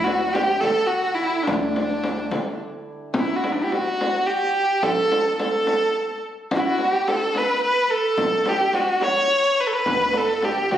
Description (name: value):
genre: Persian modal ensemble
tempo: 72 BPM (dotted quarters)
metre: 6/8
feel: straight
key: D dastgah mahur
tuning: A4 = 441 Hz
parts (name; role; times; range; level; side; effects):
- clear kamancheh; melody; 0.0-10.8 s; D4 to C#5; -20 LUFS; equal; none
- santur; second line; 0.0-5.2, 10.1-10.8 s; D4 to E5; -32 LUFS; right 3 dB; none
- upright bass; bass; 0.0-3.1, 9.9-10.8 s; D2 to D3; -32 LUFS; right 1 dB; none
- frame drum; percussion; 0.1-10.8 s; none; -26 LUFS; left 1 dB; none
room: wet recital hall reverb, RT60 1.3 s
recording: recorded on a phone in the room, studio reverb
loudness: -19 LUFS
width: side -10 dB against mid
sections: 0.0-3.2 A section; 3.2-10.8 A section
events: none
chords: none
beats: 0.64 | 1.48 2.32 | 3.16 4.00 | 4.83 5.67 | 6.51 7.35 | 8.19 9.03 | 9.87 10.71